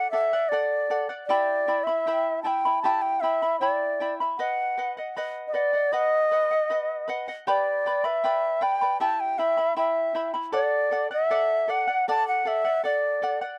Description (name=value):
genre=andean folk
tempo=78 BPM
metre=2/4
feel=straight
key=E minor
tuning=A4 = 440 Hz
part: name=bright large quena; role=melody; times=0.0-13.4 s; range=D5 to A5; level=-26 LUFS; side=equal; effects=none
part: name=charango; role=accompaniment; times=0.0-13.6 s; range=E4 to B5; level=-31 LUFS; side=equal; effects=none
room=little or no reverb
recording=dry, close 1970s-style studio recording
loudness=-25 LUFS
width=mono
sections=0.0-10.5 A section; 10.5-13.6 A section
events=none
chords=0.0 D; 1.3 Em; 4.4 B; 7.5 G; 9.0 Em; 10.5 D